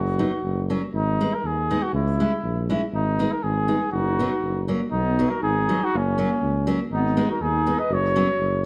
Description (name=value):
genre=alpine folk, alpine dance band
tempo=121 BPM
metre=2/4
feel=straight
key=unclear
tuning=A4 = 444 Hz
part: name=mellow trumpet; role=melody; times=0.0-8.7 s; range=C#4 to D#5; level=-28 LUFS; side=equal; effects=none
part: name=mellow tuba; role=bass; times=0.0-8.7 s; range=F#1 to D#2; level=-28 LUFS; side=equal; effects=none
part: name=fingerpicked steel-string acoustic guitar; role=accompaniment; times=0.2-8.3 s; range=F#3 to E4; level=-29 LUFS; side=equal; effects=none
part: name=mellow clarinet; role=second line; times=3.9-8.7 s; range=A#3 to B4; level=-30 LUFS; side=equal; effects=none
room=moderate recital hall reverb, RT60 1.5 s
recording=dark, warm production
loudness=-23 LUFS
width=mono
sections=0.0-8.7 A section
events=none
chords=0.4 F#; 0.9 G#m; 1.9 C#m; 2.9 G#m; 3.9 B/F#; 4.4 F#; 4.9 B; 5.9 F#; 6.9 G#m; 7.9 F#sus4